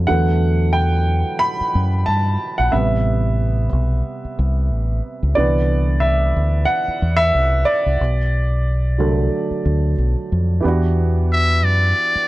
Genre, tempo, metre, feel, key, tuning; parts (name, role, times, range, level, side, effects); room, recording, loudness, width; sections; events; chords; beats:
R&B, neo-soul; 91 BPM; 4/4; swing 56% on 16ths; E minor; A4 = 441 Hz
warm upright piano; accompaniment; 0.0-12.3 s; C3 to B5; -20 LUFS; right 1 dB
deep dub fingered electric bass; bass; 0.0-12.2 s; A1 to G2; -17 LUFS; equal
trumpet with metal mute; melody; 11.3-12.3 s; D5 to E5; -16 LUFS; left 1 dB
little or no reverb; dark, warm production; -16 LUFS; side -17 dB against mid
0.0-10.6 A section; 10.6-12.3 B section
upright piano solo 0.0-10.6
0.1 Em11; 2.7 Am9; 5.4 Cmaj9; 8.0 Bm7; 10.6 Em9
| 0.08 0.74 1.40 2.06 | 2.72 3.38 4.04 4.69 | 5.35 6.01 6.67 7.33 | 7.99 8.65 9.31 9.97 | 10.63 11.29 11.95